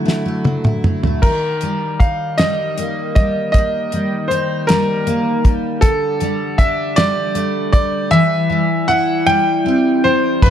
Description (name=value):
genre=six-eight pop ballad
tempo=52 BPM (dotted quarters)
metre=6/8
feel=straight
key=unclear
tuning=A4 = 440 Hz
part: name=bright grand piano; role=melody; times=0.0-10.5 s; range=F#4 to G5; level=-18 LUFS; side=equal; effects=tape echo
part: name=picked steel-string acoustic guitar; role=accompaniment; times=0.0-10.5 s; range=G2 to E4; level=-18 LUFS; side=equal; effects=double-tracked left and right
part: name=damped 70s drum kit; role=drums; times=0.1-10.5 s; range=crash cymbal, hi-hat, kick drum, snare drum, toms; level=-15 LUFS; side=equal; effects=none
room=light reverb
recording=none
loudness=-14 LUFS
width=side -9 dB against mid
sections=0.0-1.2 A section; 1.2-10.4 B section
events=drum fill 0.1-1.2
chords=0.0 Dadd9; 1.2 Eb; 5.8 Gsus2/D; 8.1 C/E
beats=0.07 | 1.23 2.39 | 3.54 4.68 | 5.83 6.97 | 8.12 9.27 | 10.43